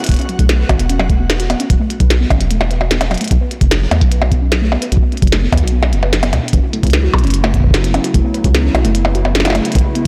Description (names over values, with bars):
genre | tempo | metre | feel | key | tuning
IDM | 149 BPM | 4/4 | straight | unclear | A4 = 438 Hz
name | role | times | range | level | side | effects
hollow soft pad | sustained chords | 0.0-0.1, 6.5-10.1 s | C#3 to E4 | -25 LUFS | equal | chorus
warbly dusty pluck | arpeggios | 0.0-10.0 s | B2 to B4 | -24 LUFS | equal | chorus, digital delay
glitchy drum kit | drums | 0.0-10.0 s | hi-hat, percussion blips, snare drum | -21 LUFS | equal | soft clipping on snare, dub echo
rubbery square bass | bass | 0.1-9.8 s | E1 to E2 | -18 LUFS | equal | none
electronic kick drum | drums | 0.1-9.8 s | none | -17 LUFS | equal | overdrive
room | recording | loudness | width
light reverb, digital ambience | blown-out, overdriven recording, overdrive | -14 LUFS | mono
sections
0.1-10.1 A section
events
none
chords
0.1 Esus4; 3.3 B5; 6.5 F#m7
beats
| 0.09 0.49 0.89 1.30 | 1.70 2.10 2.50 2.91 | 3.31 3.71 4.12 4.52 | 4.92 5.32 5.73 6.13 | 6.53 6.93 7.34 7.74 | 8.14 8.54 8.95 9.35 | 9.75